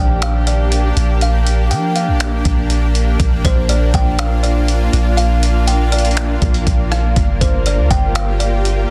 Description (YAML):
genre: hip hop, atmospheric cloud-rap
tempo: 121 BPM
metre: 4/4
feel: half-time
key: Bb major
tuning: A4 = 436 Hz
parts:
  - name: kalimba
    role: melody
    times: 0.0-8.9 s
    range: C5 to G5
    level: -25 LUFS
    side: equal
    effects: low-pass filter, digital delay
  - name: shimmering ambient pad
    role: sustained chords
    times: 0.0-8.9 s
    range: Bb3 to G4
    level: -24 LUFS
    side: equal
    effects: chorus, built-in reverb
  - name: soft 808-style bass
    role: bass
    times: 0.0-8.9 s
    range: G1 to F3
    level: -17 LUFS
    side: equal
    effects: none
  - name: trip hop sampler-style drum kit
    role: drums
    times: 0.2-8.8 s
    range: finger snaps, hi-hat, kick drum, rim click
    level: -21 LUFS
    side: equal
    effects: soft clipping on snare
room: little or no reverb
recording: dense, heavily limited modern master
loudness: -15 LUFS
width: mono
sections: 0.0-8.9 A section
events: none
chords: 0.0 Bb6; 7.2 Gm7